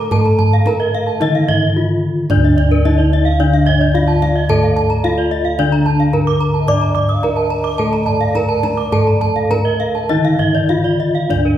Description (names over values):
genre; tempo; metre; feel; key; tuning
Balinese gamelan; 98-110 BPM; 4/4; straight; D pelog; A4 = 441 Hz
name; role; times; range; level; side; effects
gamelan-type bronze metallophone; melody; 0.0-11.6 s; D4 to D5; -19 LUFS; right 1 dB; none
breathy mellow low xiao; second line; 0.0-9.7 s; A4 to F5; -26 LUFS; right 2 dB; none
gamelan-type bronze metallophone; accompaniment; 0.0-11.3 s; D3 to D4; -21 LUFS; left 3 dB; none
gamelan-type bronze metallophone; arpeggios; 0.0-11.6 s; Bb4 to D6; -23 LUFS; right 5 dB; none
gamelan-type bossed gongs; bass; 0.0-11.6 s; D2 to D5; -18 LUFS; equal; none
gamelan-type bronze metallophone; arpeggios; 0.1-11.5 s; Bb4 to Eb6+35c; -22 LUFS; left 4 dB; none
kendang; percussion; 0.1-11.5 s; none; -20 LUFS; right 1 dB; none
room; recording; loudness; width
wet recital hall reverb, RT60 1.7 s; recorded in a church or concert hall; -12 LUFS; side -11 dB against mid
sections
0.0-11.3 A section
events
none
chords
none